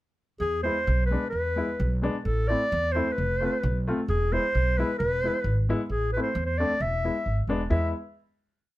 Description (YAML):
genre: klezmer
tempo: 132 BPM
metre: 2/4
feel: straight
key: E phrygian dominant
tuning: A4 = 440 Hz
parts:
  - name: mellow clarinet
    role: melody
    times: 0.4-7.9 s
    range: G#4 to E5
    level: -27 LUFS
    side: equal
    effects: none
  - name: upright bass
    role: bass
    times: 0.4-7.9 s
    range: E1 to E2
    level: -27 LUFS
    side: right 1 dB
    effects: none
  - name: warm upright piano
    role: accompaniment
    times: 0.6-7.9 s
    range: G#3 to F4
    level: -30 LUFS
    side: left 2 dB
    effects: none
room: light reverb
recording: none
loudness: -24 LUFS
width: side -16 dB against mid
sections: 0.4-7.7 A section; 7.7-8.6 final chord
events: none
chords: 0.4 E; 2.2 Am; 3.2 F; 4.1 E; 5.9 Am; 6.8 E